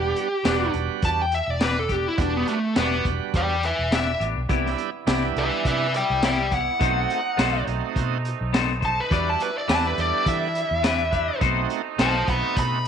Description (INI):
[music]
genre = straight-eighth soul blues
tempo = 104 BPM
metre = 4/4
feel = swing 55% on 16ths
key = unclear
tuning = A4 = 439 Hz
[part]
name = smooth overdriven lead guitar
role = melody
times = 0.0-12.9 s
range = A3 to B5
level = -24 LUFS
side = left 1 dB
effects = none
[part]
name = bright tonewheel organ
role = accompaniment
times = 0.0-12.8 s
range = G3 to F#5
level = -29 LUFS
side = right 14 dB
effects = overdrive, slow rotary speaker
[part]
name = vintage muted fingered electric bass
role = bass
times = 0.0-12.9 s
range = E1 to E3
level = -28 LUFS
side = equal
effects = none
[part]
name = crunchy breakbeat drum kit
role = drums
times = 0.2-12.9 s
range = hi-hat, kick drum, snare drum, tambourine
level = -26 LUFS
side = equal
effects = none
[part]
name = clean electric guitar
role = stabs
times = 0.4-12.2 s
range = C3 to C5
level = -28 LUFS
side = left 12 dB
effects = none
[part]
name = clear horn section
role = sustained chords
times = 4.5-12.9 s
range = G3 to E4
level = -33 LUFS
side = right 12 dB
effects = none
[sound]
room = light reverb, small room ambience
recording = 1960s-style stereo with parts hard left and right, nothing above 10.5 kHz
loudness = -20 LUFS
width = side -7 dB against mid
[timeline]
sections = 0.0-12.9 A section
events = lead electric guitar solo 0.0-12.9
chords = 0.0 Em7; 4.5 Cmaj7; 6.8 B7b9; 9.1 Em7; 11.4 B7b9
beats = 0.46 1.03 1.61 | 2.19 2.77 3.34 3.92 | 4.50 5.07 5.65 6.23 | 6.80 7.38 7.96 8.53 | 9.11 9.69 10.26 10.84 | 11.41 11.99 12.57